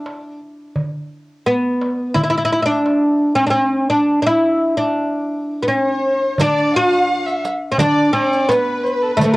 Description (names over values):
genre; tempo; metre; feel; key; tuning
Arabic maqam ensemble; 85 BPM; 4/4; straight; D maqam rast; A4 = 439 Hz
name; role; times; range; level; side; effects
oud; melody; 0.0-9.4 s; A3 to F#4-50c; -16 LUFS; equal; cassette tape
darbuka; percussion; 0.1-9.4 s; none; -23 LUFS; right 1 dB; none
warm symphonic violin section; second line; 5.7-9.4 s; A4 to F#5-50c; -21 LUFS; right 1 dB; none
warm violin; second line; 5.7-9.4 s; A4 to F5+47c; -24 LUFS; left 2 dB; none
riq; percussion; 6.4-9.4 s; none; -27 LUFS; right 4 dB; none
room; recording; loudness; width
light reverb, small room ambience; home recording on cassette; -15 LUFS; side -20 dB against mid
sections
0.0-6.4 A section; 6.4-9.4 B section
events
none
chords
none